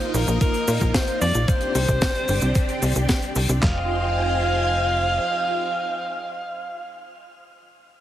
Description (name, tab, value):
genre	italo disco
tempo	112 BPM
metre	4/4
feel	straight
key	F dorian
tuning	A4 = 440 Hz
part	bright alto saxophone	melody	0.0-6.9 s	Bb4 to F5	-25 LUFS	equal	digital delay, shimmer reverb
part	string machine, full ensemble	sustained chords	0.0-6.9 s	Bb3 to Ab5	-28 LUFS	equal	phaser, ensemble chorus, shimmer reverb
part	tight funk drum kit	drums	0.0-3.6 s	cabasa, hi-hat, snare drum	-27 LUFS	left 1 dB	studio reverb
part	tight sequencer bass	bass	0.1-5.2 s	F1 to Bb2	-23 LUFS	equal	tube saturation
part	detuned 8-bit digital drum machine	drums	0.4-3.8 s	handclaps, kick drum, snare drum	-22 LUFS	equal	overdrive, studio reverb
room	moderate digital room reverb, RT60 1.0 s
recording	heavily compressed radio sound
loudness	-19 LUFS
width	side -12 dB against mid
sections	0.0-3.6 A section; 3.6-7.9 B section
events	none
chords	0.0 Bbsus4; 1.5 Csus2; 3.6 Fm7